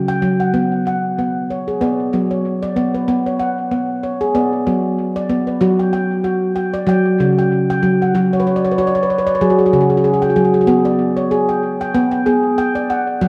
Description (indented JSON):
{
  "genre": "world meditative, meditative tuned percussion",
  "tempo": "95 BPM",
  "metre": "4/4",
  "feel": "swing 56% on 16ths",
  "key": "unclear",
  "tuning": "A4 = 441 Hz",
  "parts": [
    { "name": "handpan", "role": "solo", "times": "0.0-13.3 s", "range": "C#3 to G5", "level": "-16 LUFS", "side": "equal", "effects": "tape echo" }
  ],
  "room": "wet spring reverb, RT60 2.5 s",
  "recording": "echo-heavy mix",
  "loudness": "-17 LUFS",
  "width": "mono",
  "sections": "0.0-10.7 A section; 10.7-13.3 B section",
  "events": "handpan fill 8.3-10.7",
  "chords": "0.0 F#5; 0.5 Bm; 5.6 F#5; 10.7 Bm"
}